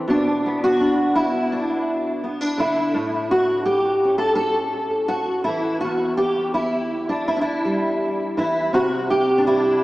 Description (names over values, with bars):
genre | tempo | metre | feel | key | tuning
folk, solo fingerstyle acoustic guitar | 83 BPM | 4/4 | straight | E minor | A4 = 438 Hz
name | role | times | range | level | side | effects
fingerpicked steel-string acoustic guitar | solo | 0.0-9.8 s | E2 to A4 | -18 LUFS | equal | ensemble chorus, tape echo
room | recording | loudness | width
wet plate reverb, RT60 3.4 s | dreamy mix soaked in reverb, small speaker sound | -18 LUFS | side -17 dB against mid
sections
0.0-9.8 A section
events
none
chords
0.1 Bm; 3.0 A; 5.8 Em; 8.7 C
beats
| 0.09 0.81 1.53 2.24 | 2.96 3.67 4.39 5.12 | 5.84 6.57 7.29 8.01 | 8.73 9.45